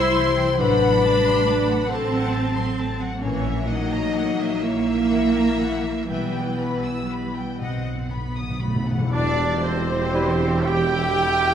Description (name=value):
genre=classical, slow romantic movement for symphony orchestra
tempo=38-48 BPM (dotted quarters)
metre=6/8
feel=rubato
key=E minor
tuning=A4 = 440 Hz
part: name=rich studio violin section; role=melody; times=0.0-11.5 s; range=B4 to C6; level=-30 LUFS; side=left 3 dB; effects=none
part: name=warm studio violin section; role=second line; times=0.0-11.5 s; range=C5 to E6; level=-31 LUFS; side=left 2 dB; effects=none
part: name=dark studio viola section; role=accompaniment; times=0.0-11.5 s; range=E3 to G4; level=-26 LUFS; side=right 4 dB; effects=none
part: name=mellow French horn section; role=sustained chords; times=0.0-11.5 s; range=B3 to C5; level=-25 LUFS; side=left 4 dB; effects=none
part: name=concert harp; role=arpeggios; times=0.0-11.5 s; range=A2 to G4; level=-30 LUFS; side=left 5 dB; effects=none
part: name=dark studio double bass section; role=bass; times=0.0-11.5 s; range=E1 to C2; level=-30 LUFS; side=right 3 dB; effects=none
part: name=rich studio cello section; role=bass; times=0.0-11.5 s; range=E2 to C4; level=-28 LUFS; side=right 4 dB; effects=none
part: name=timpani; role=percussion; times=7.6-9.1 s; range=B2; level=-27 LUFS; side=equal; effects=none
part: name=flute section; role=second line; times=9.1-11.5 s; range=C5 to G5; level=-28 LUFS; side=right 2 dB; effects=none
part: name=clear trumpet section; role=stabs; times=9.1-11.5 s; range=C4 to G4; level=-24 LUFS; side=right 2 dB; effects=none
part: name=warm tuba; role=bass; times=9.1-11.5 s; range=E1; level=-29 LUFS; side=right 3 dB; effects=none
part: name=dark clarinet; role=second line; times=10.1-10.3 s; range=E4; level=-33 LUFS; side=equal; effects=none
part: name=mellow cor anglais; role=second line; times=10.1-10.3 s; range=B4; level=-34 LUFS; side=left 1 dB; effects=none
part: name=warm bassoon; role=accompaniment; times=10.1-10.3 s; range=G3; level=-32 LUFS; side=right 1 dB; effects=none
room=wet concert hall reverb, RT60 1.9 s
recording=none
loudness=-19 LUFS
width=side -8 dB against mid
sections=0.0-9.1 A section; 9.1-11.5 B section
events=timpani fill 7.6-9.1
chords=0.0 C; 0.6 F#dim/A; 3.2 F#7/A#; 6.1 Em/B; 7.6 B; 9.1 Em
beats=| 0.60 1.91 | 3.24 4.63 | 6.11 7.62 | 9.13 10.65